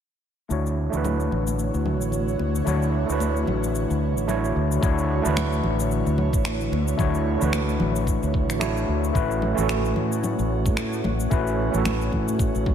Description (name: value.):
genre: sunset chillout.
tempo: 111 BPM.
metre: 4/4.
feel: swing 57% on 16ths.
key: unclear.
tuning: A4 = 440 Hz.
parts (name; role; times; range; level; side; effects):
overdriven tine electric piano; accompaniment; 0.5-12.7 s; A3 to C#5; -26 LUFS; moving between left 5 dB and right 6 dB; auto-pan, low-pass filter, ping-pong delay.
airy breathy pad; sustained chords; 0.5-12.7 s; D3 to C#5; -30 LUFS; right 2 dB; chorus.
fretless electric bass; bass; 0.5-12.7 s; A1 to A2; -25 LUFS; equal; analog chorus.
electronic cabasa, congas and finger snaps; drums; 0.5-12.7 s; none; -32 LUFS; left 3 dB; none.
congas; percussion; 0.9-12.4 s; none; -33 LUFS; left 1 dB; none.
electronic kick drum; drums; 4.8-12.7 s; none; -24 LUFS; equal; none.
room: light reverb, digital ambience.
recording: none.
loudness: -21 LUFS.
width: side -8 dB against mid.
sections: 0.5-4.8 A section; 4.8-12.7 B section.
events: filter sweep on tine electric piano 0.5-4.8.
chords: 0.5 Dmaj9; 9.2 A69.